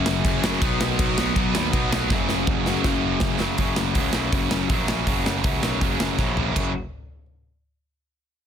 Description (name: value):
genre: punk rock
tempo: 161 BPM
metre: 4/4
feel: straight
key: F# major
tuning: A4 = 440 Hz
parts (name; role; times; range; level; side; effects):
- distorted electric guitar; riff; 0.0-6.7 s; F#2 to D#4; -26 LUFS; right 17 dB; overdrive
- overdriven electric guitar; riff; 0.0-6.7 s; F#2 to B3; -27 LUFS; left 12 dB; none
- sludgy distorted guitar; riff; 0.0-3.6 s; F#2 to B3; -29 LUFS; equal; overdrive
- fuzz picked electric bass; bass; 0.0-6.7 s; F#1 to D#2; -28 LUFS; equal; overdrive
- big rock drum kit; drums; 0.1-6.6 s; crash cymbal, hi-hat, kick drum, snare drum, toms; -24 LUFS; equal; none
room: little or no reverb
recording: dense, heavily limited modern master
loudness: -20 LUFS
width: side -8 dB against mid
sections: 0.0-3.6 A section; 3.6-6.6 B section; 6.6-8.0 C section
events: drum fill 2.1-3.6, 6.2-6.6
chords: 0.0 F#; 0.6 B; 2.1 F#; 6.6 F#5